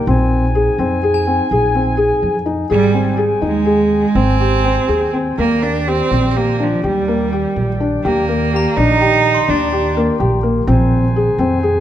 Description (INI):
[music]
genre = contemporary instrumental, chamber music in an uneven meter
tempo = 250 BPM (eighths)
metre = 11/8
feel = straight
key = unclear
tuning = A4 = 439 Hz
[part]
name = mellow woodwind section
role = sustained chords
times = 0.0-11.8 s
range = Eb3 to Ab5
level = -25 LUFS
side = left 3 dB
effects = none
[part]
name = felt-muted upright piano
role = arpeggios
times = 0.0-11.8 s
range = Bb3 to Ab4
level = -17 LUFS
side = left 2 dB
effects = none
[part]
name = glockenspiel with brass mallets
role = texture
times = 0.0-2.8, 8.6-10.9 s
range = G5 to C6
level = -27 LUFS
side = left 7 dB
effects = none
[part]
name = upright bass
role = bass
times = 0.1-11.8 s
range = Ab1 to F2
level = -18 LUFS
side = right 1 dB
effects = none
[part]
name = bright cello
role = melody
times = 2.7-10.0 s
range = F3 to Eb4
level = -17 LUFS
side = right 6 dB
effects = none
[sound]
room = moderate recital hall reverb, RT60 1.8 s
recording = none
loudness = -13 LUFS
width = side -11 dB against mid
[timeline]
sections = 0.0-11.8 A section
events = none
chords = 0.1 Bb9sus4; 2.7 Abmaj7; 5.4 Ebmaj7; 10.7 Bb9sus4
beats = | 0.07 0.31 0.55 0.79 1.03 1.27 1.50 1.74 1.98 2.22 2.46 | 2.70 2.94 3.18 3.42 3.67 3.91 4.15 4.40 4.64 4.89 5.14 | 5.38 5.63 5.87 6.12 6.36 6.60 6.84 7.08 7.32 7.56 7.80 | 8.05 8.29 8.53 8.77 9.01 9.25 9.48 9.72 9.96 10.20 10.44 | 10.68 10.91 11.15 11.39 11.63